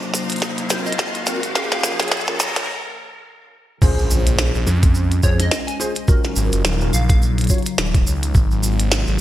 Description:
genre	glitch hop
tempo	106 BPM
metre	4/4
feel	swing 58% on 16ths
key	Bb minor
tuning	A4 = 442 Hz
part	warbly tape-like pad	sustained chords	0.0-9.2 s	C3 to F4	-28 LUFS	left 3 dB	chorus, built-in reverb, sidechain pumping
part	maracas	percussion	0.0-9.2 s	none	-30 LUFS	right 2 dB	none
part	riser and impact	sound effects	0.0-6.1 s	none	-27 LUFS	equal	none
part	rich chamber string section	texture	0.0-2.7 s	C5 to Bb5	-32 LUFS	left 2 dB	sidechain pumping
part	glitchy drum kit	drums	0.1-9.0 s	crash cymbal, hi-hat, snare drum	-22 LUFS	equal	studio reverb, gated reverb
part	electronic kick drum	drums	0.4-8.5 s	none	-16 LUFS	equal	high-pass filter on kick, studio reverb, high-pass filter on room
part	phased detuned saw bass	bass	0.6-9.2 s	Eb1 to F2	-20 LUFS	equal	phaser, tube saturation, high-pass filter
part	plucky unison lead	melody	0.7-1.8, 5.2-7.2 s	C5 to Ab5	-29 LUFS	equal	phaser, digital delay
part	tine electric piano	stabs	0.7-7.6 s	C4 to Db5	-27 LUFS	equal	ensemble chorus, sidechain pumping, digital delay
room	light reverb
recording	bright 1980s-style digital production, high-pass filter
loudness	-16 LUFS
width	side -13 dB against mid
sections	0.0-3.8 A section; 3.8-9.2 B section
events	build-up 0.0-3.8; drum fill 0.0-2.7; riser 0.0-2.7; filter sweep on digital synth lead 0.0-3.8; filter sweep on ambient pad 0.0-3.8; filter sweep 0.0-3.8; break 2.7-3.8; drop 3.8-9.2; impact 3.8-6.1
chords	0.0 Ab13; 1.6 Gbmaj7; 3.8 Bbm9; 6.1 Ebm7; 8.3 Ab13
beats	0.42 0.99 | 1.55 2.12 2.69 3.25 | 3.82 4.38 4.95 5.51 | 6.08 6.65 7.21 7.78 | 8.35 8.91

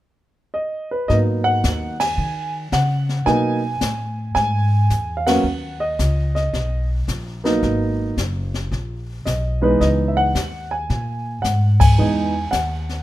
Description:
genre	jazz piano trio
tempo	110 BPM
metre	4/4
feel	swing 68% on 8ths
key	G# minor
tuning	A4 = 440 Hz
part	warm grand piano	melody	0.5-13.0 s	E3 to G#5	-20 LUFS	right 1 dB	none
part	upright bass	bass	1.1-13.0 s	F#1 to D#3	-21 LUFS	equal	none
part	jazz brush drum kit	drums	1.1-13.0 s	brushed snare drum, hi-hat, kick drum, ride cymbal, snare drum	-24 LUFS	left 2 dB	none
room	little or no reverb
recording	minimal, uncompressed stereo recording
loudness	-18 LUFS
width	side -15 dB against mid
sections	0.0-1.1 A section; 1.1-13.0 B section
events	band accent 1.9, 5.2, 11.7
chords	0.0 N.C.; 1.1 G#m9; 9.8 C#m9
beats	0.01 0.55 | 1.10 1.64 2.18 2.73 | 3.27 3.81 4.36 4.90 | 5.44 5.99 6.53 7.08 | 7.62 8.17 8.71 9.26 | 9.80 10.35 10.89 11.44 | 11.98 12.53

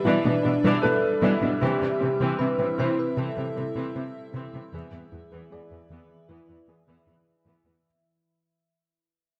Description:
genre	cinematic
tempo	77 BPM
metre	4/4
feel	straight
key	unclear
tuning	A4 = 442 Hz
part	soft struck synth lead	melody	0.0-6.7 s	D4 to C5	-31 LUFS	equal	chorus
part	evolving wavetable pad	sustained chords	0.0-7.8 s	E3 to E5	-33 LUFS	equal	chorus, built-in reverb, phaser
part	bright baby grand piano	texture	0.0-7.9 s	E4 to E5	-34 LUFS	equal	digital delay
part	rich studio viola section	accompaniment	0.1-7.7 s	E3 to D4	-32 LUFS	equal	none
part	tight sequenced synth	arpeggios	0.1-7.8 s	C3 to E4	-33 LUFS	equal	none
part	rich studio cello section	bass	0.1-7.7 s	E2 to C3	-32 LUFS	equal	none
room	moderate recital hall reverb, RT60 1.5 s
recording	none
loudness	-24 LUFS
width	mono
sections	0.0-7.8 A section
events	fade-out 0.0-7.8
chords	0.0 G6/B; 1.6 C; 4.7 E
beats	0.06 0.83 | 1.61 2.39 3.17 3.95 | 4.73 5.51 6.29 7.07

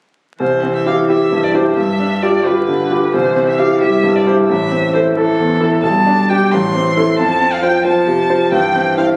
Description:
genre	quick classical-period movement for piano trio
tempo	88 BPM (dotted quarters)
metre	6/8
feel	rubato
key	C major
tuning	A4 = 440 Hz
part	warm violin	melody	0.4-9.1 s	A4 to C6	-20 LUFS	equal	none
part	rich cello	second line	0.4-9.2 s	D3 to G3	-24 LUFS	equal	none
part	clear concert grand piano	accompaniment	0.4-9.2 s	A1 to C5	-16 LUFS	equal	none
room	moderate concert hall reverb, RT60 1.8 s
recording	recorded on a phone in the room, club ambience, vinyl crackle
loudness	-14 LUFS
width	mono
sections	0.4-9.2 A section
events	none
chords	0.4 C; 1.8 G7; 3.1 C; 4.5 Am; 5.8 G/B; 6.5 Am; 7.2 F; 8.5 C/G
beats	| 0.40 1.09 | 1.77 2.46 | 3.14 3.81 | 4.49 5.16 | 5.83 6.52 | 7.19 7.85 | 8.53

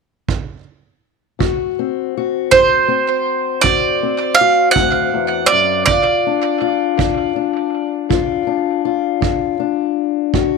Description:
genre	acoustic country blues, solo or duo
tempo	54 BPM (dotted quarters)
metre	12/8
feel	straight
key	D mixolydian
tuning	A4 = 440 Hz
part	kick drum	drums	0.3-10.5 s	none	-20 LUFS	right 5 dB	none
part	fingerpicked acoustic archtop guitar	accompaniment	1.4-10.6 s	D2 to F#4	-18 LUFS	left 14 dB	none
part	bowl-back mandolin	melody	2.5-6.7 s	C5 to F#5	-14 LUFS	right 5 dB	tape echo
room	light reverb, studio ambience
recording	1960s-style stereo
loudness	-14 LUFS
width	side -4 dB against mid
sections	0.0-1.4 A section; 1.4-10.6 B section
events	none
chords	0.0 N.C.; 1.4 D7; 5.9 G5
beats	0.28 | 1.40 2.52 3.64 4.76 | 5.87 6.99 8.11 9.22 | 10.34

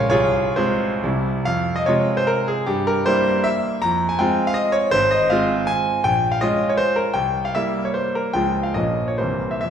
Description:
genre	classical, romantic triple-time dance for piano with dotted rhythms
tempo	123-170 BPM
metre	3/4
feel	rubato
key	F minor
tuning	A4 = 440 Hz
part	bright concert grand piano	solo	0.0-9.7 s	Ab1 to Bb5	-18 LUFS	equal	none
room	wet recital hall reverb, RT60 1.7 s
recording	recorded in a church or concert hall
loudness	-18 LUFS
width	side -8 dB against mid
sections	0.0-1.5 A section; 1.5-9.7 B section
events	none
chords	0.1 Fm/C; 1.0 C; 1.5 Fm; 2.7 C7/G; 3.8 Fm; 4.9 Fm/Ab; 6.0 Bbm7; 7.2 C7; 8.3 Db; 8.7 Bbm; 9.2 C7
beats	| 0.11 0.57 1.03 | 1.47 1.88 2.29 | 2.67 3.06 3.45 | 3.82 4.19 4.56 | 4.92 5.30 5.67 | 6.03 6.41 6.79 | 7.15 7.54 7.95 | 8.34 8.74 9.18 | 9.60

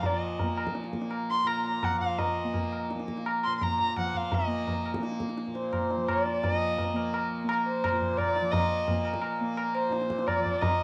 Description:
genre	indian classical, Hindustani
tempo	170 BPM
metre	3/4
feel	straight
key	unclear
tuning	A4 = 438 Hz
part	dark violin	melody	0.0-10.8 s	C5 to C6	-33 LUFS	equal	none
part	tanpura	drone	0.0-10.8 s	Bb2 to Bb3	-36 LUFS	equal	none
part	tabla	percussion	0.0-10.7 s	none	-33 LUFS	equal	none
room	moderate plate reverb, RT60 3.6 s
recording	none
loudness	-29 LUFS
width	mono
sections	0.0-6.4 A section; 6.4-10.8 B section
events	speeding up 0.0-10.8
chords	none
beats	| 0.04 0.39 0.75 | 1.11 1.47 1.83 | 2.19 2.54 2.90 | 3.25 3.61 3.96 | 4.32 4.67 5.03 | 5.38 5.73 6.08 | 6.44 6.79 7.14 | 7.49 7.84 8.19 | 8.54 8.88 9.23 | 9.58 9.93 10.27 | 10.62

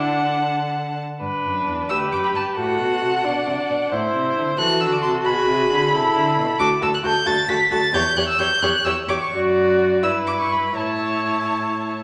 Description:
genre	quick classical-period movement for string quartet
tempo	81-91 BPM (dotted quarters)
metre	6/8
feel	rubato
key	D major from 6.6 s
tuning	A4 = 440 Hz
part	clear violin	melody	0.0-12.0 s	F#5 to B6	-24 LUFS	equal	none
part	rich violin	second line	0.0-12.0 s	G#4 to F#5	-26 LUFS	equal	none
part	rich viola	accompaniment	0.0-12.0 s	D4 to G4	-26 LUFS	equal	none
part	rich cello	bass	0.0-12.0 s	D2 to E3	-31 LUFS	equal	none
room	wet recital hall reverb, RT60 1.5 s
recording	none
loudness	-20 LUFS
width	mono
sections	0.0-1.2 A section; 1.2-12.0 B section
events	none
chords	0.0 D; 1.2 G; 2.6 Am69; 3.2 Bm (rootless); 3.9 Am; 5.3 Bm6; 5.9 Am/C; 6.6 D; 7.9 C#dim/E; 9.3 D/F#; 10.0 Em/G; 10.8 A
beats	0.49 | 1.21 1.90 | 2.57 3.25 | 3.92 4.59 | 5.26 5.93 | 6.59 7.26 | 7.94 8.62 | 9.32 10.03 | 10.76 11.49

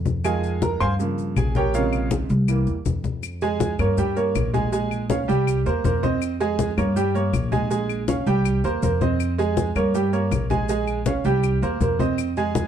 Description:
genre	latin, salsa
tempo	161 BPM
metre	4/4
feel	straight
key	F minor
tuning	A4 = 440 Hz
part	upright bass	bass	0.0-12.7 s	Bb1 to G2	-24 LUFS	equal	none
part	congas	percussion	0.1-12.7 s	none	-26 LUFS	left 5 dB	none
part	maracas	percussion	0.1-12.7 s	none	-42 LUFS	left 12 dB	none
part	bright baby grand piano	accompaniment	0.2-12.7 s	C3 to C6	-23 LUFS	right 4 dB	none
part	claves	percussion	0.2-12.4 s	none	-36 LUFS	left 13 dB	none
room	moderate studio reverb, RT60 0.8 s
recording	dark, warm production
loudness	-20 LUFS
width	side -9 dB against mid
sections	0.0-3.2 A section; 3.2-12.7 B section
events	grand piano solo 0.0-3.2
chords	0.2 Fm7; 1.0 Gm7b5; 1.7 Bbm7; 2.5 C7; 3.2 Fm; 4.0 Gdim; 4.7 Bbm7; 5.5 C7; 6.2 Fm7; 7.0 Gdim; 7.7 Bbm7; 8.5 C7; 9.2 Fm7; 9.9 Gdim; 10.7 Bbm7; 11.4 C7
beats	| 0.24 0.62 0.99 1.37 | 1.74 2.11 2.49 2.86 | 3.23 3.61 3.98 4.35 | 4.73 5.10 5.47 5.84 | 6.22 6.59 6.96 7.34 | 7.71 8.08 8.46 8.83 | 9.20 9.57 9.95 10.32 | 10.69 11.06 11.44 11.81 | 12.18 12.55

